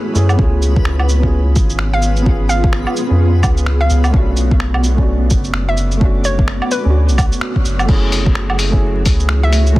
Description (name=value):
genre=future garage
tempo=128 BPM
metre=4/4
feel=swing 60% on 16ths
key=unclear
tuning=A4 = 440 Hz
part: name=felt-muted upright piano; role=accompaniment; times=0.0-9.8 s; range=A3 to G#4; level=-22 LUFS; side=right 1 dB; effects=vintage 12-bit sampler grit, sidechain pumping, digital delay
part: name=granular cloud pad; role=sustained chords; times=0.0-9.8 s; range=A3 to D6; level=-24 LUFS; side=equal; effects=built-in reverb, sidechain pumping
part: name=backwards swelling texture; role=texture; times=0.0-7.9 s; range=B3 to B4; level=-33 LUFS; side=left 1 dB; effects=built-in reverb
part: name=soft dub sub bass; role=bass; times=0.2-9.8 s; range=F#1 to F#2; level=-15 LUFS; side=equal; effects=sidechain pumping
part: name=lo-fi sampler-style drum kit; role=drums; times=0.2-9.7 s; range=crash cymbal, finger snaps, hi-hat, shaker, woodblock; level=-22 LUFS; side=right 1 dB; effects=studio ambience, soft clipping on snare
part: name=electronic kick drum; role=drums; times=0.4-9.8 s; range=none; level=-15 LUFS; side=equal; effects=overdrive, studio ambience
part: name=hollow square pluck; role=melody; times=1.9-9.8 s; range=B4 to E#5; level=-23 LUFS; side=equal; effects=chorus, tape echo
room=little or no reverb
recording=dense, heavily limited modern master, vinyl crackle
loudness=-12 LUFS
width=side -18 dB against mid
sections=0.0-7.9 A section; 7.9-9.8 B section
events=band accent 7.4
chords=0.4 C#7; 4.1 Bm7; 7.9 F#m7